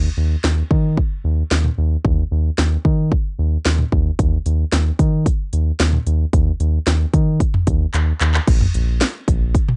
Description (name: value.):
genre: synth-pop.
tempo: 112 BPM.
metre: 4/4.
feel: straight.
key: unclear.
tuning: A4 = 440 Hz.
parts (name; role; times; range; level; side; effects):
round analog bass; bass; 0.0-9.6 s; Bb1 to Eb3; -19 LUFS; equal; none.
house drum kit; drums; 0.4-9.8 s; crash cymbal, handclaps, hi-hat, kick drum, snare drum, toms; -21 LUFS; equal; cassette tape.
room: little or no reverb.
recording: home recording on cassette, nothing above 10.8 kHz.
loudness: -18 LUFS.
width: mono.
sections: 0.0-8.5 A section; 8.5-9.8 B section.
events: drum fill 7.9-8.5.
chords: none.